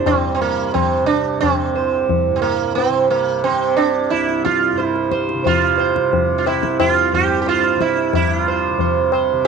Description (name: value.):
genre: indian classical, Hindustani.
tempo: 89 BPM.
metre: 4/4.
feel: straight.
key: unclear.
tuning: A4 = 440 Hz.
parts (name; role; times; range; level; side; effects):
sitar; melody; 0.0-9.5 s; Bb3 to C5; -16 LUFS; right 8 dB; none.
tanpura; drone; 0.0-9.5 s; C2 to C3; -24 LUFS; left 3 dB; none.
tabla; percussion; 0.1-9.5 s; none; -22 LUFS; left 8 dB; none.
room: moderate echo chamber reverb, RT60 1.7 s.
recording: 1960s-style stereo with parts hard left and right, nothing above 10.3 kHz.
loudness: -15 LUFS.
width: side -5 dB against mid.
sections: 0.0-8.1 A section; 8.1-9.5 B section.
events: none.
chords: none.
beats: | 0.07 0.75 1.42 2.10 | 2.78 3.45 4.12 4.80 | 5.47 6.14 6.80 7.47 | 8.14 8.80 9.46.